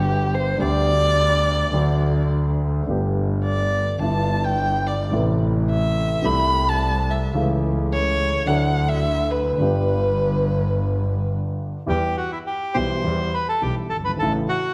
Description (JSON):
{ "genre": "tango", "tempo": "106 BPM", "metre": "4/4", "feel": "rubato", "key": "G major", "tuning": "A4 = 440 Hz", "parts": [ { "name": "warm violin", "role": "second line", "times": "0.0-11.3 s", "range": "G4 to B5", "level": "-25 LUFS", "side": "equal", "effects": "none" }, { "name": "warm concert grand piano", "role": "accompaniment", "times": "0.0-14.5 s", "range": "F#1 to B4", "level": "-26 LUFS", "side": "equal", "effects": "none" }, { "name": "clear double bass", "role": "bass", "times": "0.0-14.5 s", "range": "G1 to E2", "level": "-26 LUFS", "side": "equal", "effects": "none" }, { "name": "bandoneon", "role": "melody", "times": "11.9-14.7 s", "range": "E4 to C5", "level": "-26 LUFS", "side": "equal", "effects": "none" } ], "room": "moderate scoring stage reverb, RT60 1.5 s", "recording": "dark, warm production", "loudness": "-21 LUFS", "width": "mono", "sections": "0.0-11.9 A section; 11.9-14.7 B section", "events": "violin solo 0.0-11.9", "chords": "0.0 G; 0.6 G/D; 1.7 D; 2.9 Gadd9; 4.0 Em7/G; 5.1 Am; 6.2 C6; 7.4 A/C#; 8.5 Dadd9; 9.6 G; 11.9 Em; 14.2 A" }